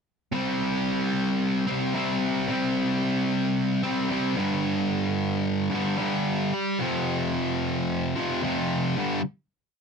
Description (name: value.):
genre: rock.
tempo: 111 BPM.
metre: 4/4.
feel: straight.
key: unclear.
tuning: A4 = 440 Hz.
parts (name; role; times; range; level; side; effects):
sludgy distorted guitar; solo; 0.3-9.2 s; F2 to C4; -24 LUFS; equal; overdrive.
room: light reverb.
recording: dry, close 1970s-style studio recording.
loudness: -24 LUFS.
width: side -5 dB against mid.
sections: 0.3-9.0 verse; 9.0-9.8 final chord.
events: none.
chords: 0.3 C5; 4.4 G5; 6.8 F5; 9.0 G5.